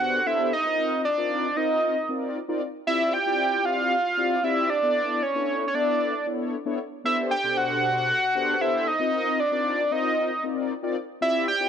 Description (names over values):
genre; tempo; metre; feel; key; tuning
funk; 115 BPM; 4/4; straight; unclear; A4 = 442 Hz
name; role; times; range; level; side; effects
fat analog lead; melody; 0.0-11.7 s; C#5 to G5; -23 LUFS; right 1 dB; chorus, slapback echo
mellow synth brass; accompaniment; 0.0-11.7 s; B2 to Eb5; -28 LUFS; left 4 dB; chorus
room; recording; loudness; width
light reverb; none; -22 LUFS; side -8 dB against mid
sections
0.0-11.7 A section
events
none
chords
0.0 Am11; 0.5 Cm11; 2.6 Dm11; 4.7 Bm11; 6.8 Am11; 8.9 Cm11; 11.0 Dm11